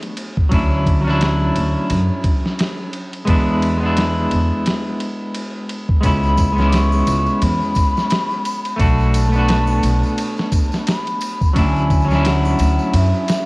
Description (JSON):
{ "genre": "trip hop", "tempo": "87 BPM", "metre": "4/4", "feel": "swing 58% on 16ths", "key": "unclear", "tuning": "A4 = 440 Hz", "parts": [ { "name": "clean electric guitar", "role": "accompaniment", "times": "0.0-13.5 s", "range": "F#3 to F#4", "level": "-20 LUFS", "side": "equal", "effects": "tremolo, cassette tape" }, { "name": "dusty soul sampler-style drum kit", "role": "drums", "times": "0.0-13.5 s", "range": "kick drum, ride cymbal, snare drum", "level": "-20 LUFS", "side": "equal", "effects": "none" }, { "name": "upright bass", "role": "bass", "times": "0.5-13.1 s", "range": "B1 to F#2", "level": "-17 LUFS", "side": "equal", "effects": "tube saturation" }, { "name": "tambourine and triangle", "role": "percussion", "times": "6.0-13.4 s", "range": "none", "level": "-37 LUFS", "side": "right 2 dB", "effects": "none" }, { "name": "mellow hollow concert flute", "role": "melody", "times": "6.1-13.5 s", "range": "E5 to D6", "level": "-23 LUFS", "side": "left 1 dB", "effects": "vintage 12-bit sampler grit, cassette tape, dub echo" } ], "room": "little or no reverb", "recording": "home recording on cassette", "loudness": "-15 LUFS", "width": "side -25 dB against mid", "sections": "0.0-13.5 A section", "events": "none", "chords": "0.0 Bm7; 0.5 Dmaj9; 3.3 E7; 6.0 C#m7; 8.8 Bm7; 11.6 Dmaj9" }